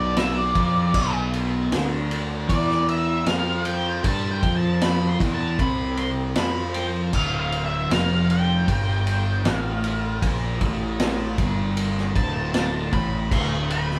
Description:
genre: psychedelic rock.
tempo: 78 BPM.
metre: 4/4.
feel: straight.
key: D dorian.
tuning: A4 = 440 Hz.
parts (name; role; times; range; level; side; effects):
octave-fuzz lead guitar; melody; 0.0-14.0 s; D5 to C6; -29 LUFS; equal; distortion.
thick fuzz guitar; riff; 0.0-14.0 s; D2 to G4; -28 LUFS; equal; distortion, phaser.
fuzz picked electric bass; bass; 0.0-14.0 s; D1 to G2; -29 LUFS; equal; overdrive.
vintage drum kit; drums; 0.2-14.0 s; crash cymbal, kick drum, ride cymbal, snare drum; -28 LUFS; equal; none.
room: wet studio reverb, RT60 0.5 s.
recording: band playing live in one room.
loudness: -23 LUFS.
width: mono.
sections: 0.0-14.0 A section.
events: lead electric guitar solo 0.0-14.0.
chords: 0.0 G13/B; 7.1 Dm.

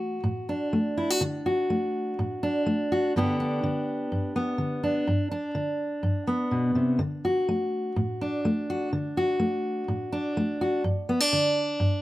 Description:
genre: folk.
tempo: 124 BPM.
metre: 4/4.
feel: straight.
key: unclear.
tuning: A4 = 440 Hz.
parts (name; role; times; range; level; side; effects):
fingerpicked steel-string acoustic guitar; solo; 0.0-12.0 s; G2 to G4; -24 LUFS; equal; none.
room: light reverb.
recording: none.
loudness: -24 LUFS.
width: side -16 dB against mid.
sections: 0.0-12.0 A section.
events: none.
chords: 0.0 D; 3.1 G; 7.0 D; 10.8 G5.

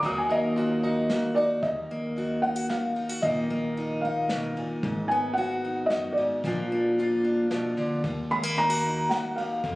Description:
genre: acoustic folk duo or small band.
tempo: 112 BPM.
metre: 3/4.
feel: straight.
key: Eb harmonic minor.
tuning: A4 = 443 Hz.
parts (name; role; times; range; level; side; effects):
felt-muted upright piano; melody; 0.0-9.8 s; D5 to Eb6; -27 LUFS; equal; none.
fingerpicked steel-string acoustic guitar; accompaniment; 0.0-9.8 s; Eb2 to Gb4; -27 LUFS; equal; none.
warm chamber string section; sustained chords; 0.0-1.6 s; Gb3 to F5; -40 LUFS; equal; none.
bluegrass banjo; arpeggios; 0.0-1.7 s; Gb3 to F4; -36 LUFS; right 2 dB; none.
upright bass; bass; 0.0-9.8 s; Ab1 to F2; -37 LUFS; equal; none.
vintage brush drum kit; drums; 0.0-9.8 s; hi-hat, kick drum, ride cymbal, snare drum; -38 LUFS; equal; none.
room: moderate concert hall reverb, RT60 2.0 s.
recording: recorded on a phone in the room, club reverb.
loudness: -24 LUFS.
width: side -19 dB against mid.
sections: 0.0-1.6 A section; 1.6-9.8 B section.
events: felt piano solo 0.0-1.6.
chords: 0.0 Ebmadd9; 3.2 Bbsus4; 4.8 Abm7; 6.4 Bb; 8.0 Ebm.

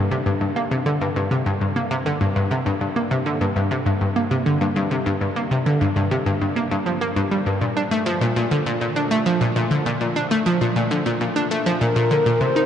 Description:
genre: ambient.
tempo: 100 BPM.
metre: 4/4.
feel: straight.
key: Bb major.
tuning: A4 = 440 Hz.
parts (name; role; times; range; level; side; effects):
analog pluck; riff; 0.0-12.6 s; G2 to Eb4; -19 LUFS; equal; chorus, analog delay.
breathy flute-like synth lead; melody; 11.8-12.7 s; Bb4 to C5; -19 LUFS; left 1 dB; chorus, analog delay.
room: wet huge ambient reverb, RT60 8.1 s.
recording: dark, warm production, nothing above 10.6 kHz.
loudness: -19 LUFS.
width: side -9 dB against mid.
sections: 0.0-12.7 A section.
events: none.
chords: 0.0 Gm; 7.6 Bb.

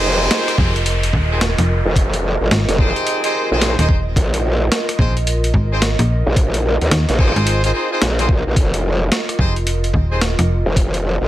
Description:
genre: glitch hop.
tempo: 109 BPM.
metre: 4/4.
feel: swing 63% on 16ths.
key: F minor.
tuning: A4 = 440 Hz.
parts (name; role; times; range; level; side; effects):
brilliant horn section; stabs; 0.0-10.2 s; C4 to C5; -22 LUFS; equal; vintage 12-bit sampler grit, sidechain pumping, tape echo.
growl bass; bass; 0.0-11.3 s; F1 to Eb2; -17 LUFS; equal; chorus, tube saturation.
downlifter; sound effects; 0.0-4.2 s; none; -26 LUFS; equal; none.
airy breathy pad; texture; 0.0-11.3 s; F4 to Eb5; -26 LUFS; right 2 dB; chorus, sidechain pumping.
boom bap sampler-style drum kit; drums; 0.3-11.0 s; hi-hat, rim click, snare drum; -21 LUFS; equal; none.
slap-like FM bass; bass; 0.6-10.6 s; Eb1 to Eb2; -17 LUFS; equal; tube saturation.
electronic kick drum; drums; 0.6-10.9 s; none; -17 LUFS; equal; none.
room: little or no reverb.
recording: none.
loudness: -14 LUFS.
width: side -14 dB against mid.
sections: 0.0-11.3 A section.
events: none.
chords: 0.0 Fm7; 4.2 Bb7sus4; 8.6 F7(no3).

